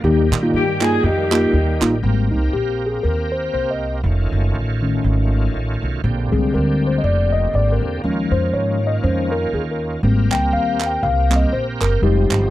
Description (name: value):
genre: uptempo gospel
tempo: 120 BPM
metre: 4/4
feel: swing 56% on 8ths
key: Ab major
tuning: A4 = 441 Hz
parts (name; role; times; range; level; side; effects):
- mellow tine electric piano; accompaniment; 0.0-12.5 s; D3 to G5; -20 LUFS; left 2 dB; slow stereo tremolo
- bright tonewheel organ; sustained chords; 0.0-12.5 s; D3 to Bb4; -26 LUFS; right 4 dB; slow rotary speaker, overdrive, chorus vibrato
- upright bass; bass; 0.0-12.5 s; F1 to Bb2; -19 LUFS; equal; none
- group handclap; percussion; 0.3-1.9, 10.3-12.4 s; none; -24 LUFS; right 7 dB; none
- mellow saxophone section; melody; 0.5-2.0 s; Bb3 to Ab4; -20 LUFS; left 1 dB; none
room: little or no reverb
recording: dry, close 1970s-style studio recording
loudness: -16 LUFS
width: side -15 dB against mid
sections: 0.0-2.0 A section; 2.0-12.5 B section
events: tine electric piano solo 2.0-12.5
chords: 0.0 Eb; 2.0 Abmaj9; 4.0 F7alt; 6.0 Bb13; 8.0 Eb9sus4; 10.0 Abmaj9 (rootless)